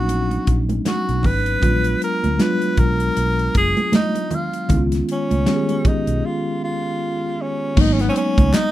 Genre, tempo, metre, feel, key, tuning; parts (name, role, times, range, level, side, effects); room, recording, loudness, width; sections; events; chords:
lush 1970s-style soul; 78 BPM; 4/4; swing 58% on 16ths; A4 = 438 Hz
breathy tenor saxophone; melody; 0.0-8.7 s; Cb4 to B4; -23 LUFS; right 1 dB
mellow tine electric piano; accompaniment; 0.0-8.7 s; Eb3 to Ab4; -22 LUFS; left 1 dB; medium stereo tremolo
vintage muted fingered electric bass; bass; 0.0-8.5 s; Gb1 to D2; -22 LUFS; equal
modern studio drum kit; drums; 0.1-8.7 s; crash cymbal, hi-hat, kick drum, snare drum; -20 LUFS; equal
congas; percussion; 0.1-8.7 s; -25 LUFS; right 4 dB
group handclap; percussion; 8.5-8.7 s; -30 LUFS; left 1 dB
light reverb; rough home demo mix; -17 LUFS; side -14 dB against mid
0.0-7.8 A section
break 6.2-7.8
0.0 Bmaj7; 1.6 Bb7b9b13; 4.7 Db7; 7.8 Abm7